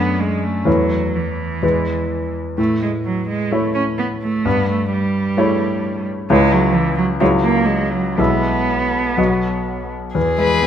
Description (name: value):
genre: quick classical-period movement for piano quartet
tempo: 116-134 BPM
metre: 4/4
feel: rubato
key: A major, E major from 6.3 s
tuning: A4 = 440 Hz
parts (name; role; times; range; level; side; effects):
- warm cello; second line; 0.0-10.7 s; E3 to C#4; -20 LUFS; right 4 dB; none
- clear grand piano; accompaniment; 0.0-10.7 s; B1 to E5; -18 LUFS; left 1 dB; none
- warm violin; second line; 10.2-10.7 s; G#4; -22 LUFS; left 4 dB; none
- warm violin; melody; 10.4-10.7 s; B4; -17 LUFS; left 6 dB; none
room: wet stone room reverb, RT60 1.1 s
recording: none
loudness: -16 LUFS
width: side -9 dB against mid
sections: 0.0-10.2 A section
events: none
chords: 0.0 D/F#; 0.7 A/E; 1.6 E; 2.6 A; 4.5 A7/G; 6.3 C#m; 7.2 F#5/C#; 8.2 E/B; 9.2 B; 10.2 E